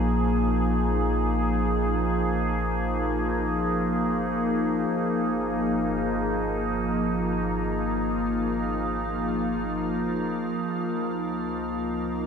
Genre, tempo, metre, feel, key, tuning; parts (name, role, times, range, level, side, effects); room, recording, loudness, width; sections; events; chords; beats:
ambient; free time; A4 = 441 Hz
evolving wavetable pad; sustained chords; 0.0-12.3 s; F3 to Ab4; -24 LUFS; equal; chorus, built-in reverb
round analog bass; bass; 0.0-12.3 s; Ab1 to C2; -31 LUFS; equal; tube saturation
organ-like drone; drone; 5.8-12.3 s; Bb3 to F4; -34 LUFS; left 3 dB; ensemble chorus, built-in reverb
wet cathedral reverb, RT60 5.5 s; in a vast, echoing space; -24 LUFS; side -6 dB against mid
0.0-12.3 A section
fade-out on analog synth bass 0.0-12.3
0.0 Bb5; 4.9 Absus2; 10.7 Cm7
free time